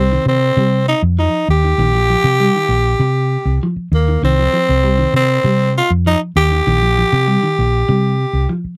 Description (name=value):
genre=afrobeat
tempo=98 BPM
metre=4/4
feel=straight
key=C minor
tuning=A4 = 440 Hz
part: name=raspy tenor saxophone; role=melody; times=0.0-8.5 s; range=Bb3 to G4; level=-18 LUFS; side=equal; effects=none
part: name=clean electric guitar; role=arpeggios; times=0.0-8.7 s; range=Eb3 to G3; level=-22 LUFS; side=equal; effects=none
part: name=hollow-body short-scale fingered electric bass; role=bass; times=0.0-8.7 s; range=Bb1 to C3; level=-18 LUFS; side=equal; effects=none
room=light reverb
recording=dry, close 1970s-style studio recording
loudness=-15 LUFS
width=mono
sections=0.0-8.8 A section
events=none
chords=0.0 Cm7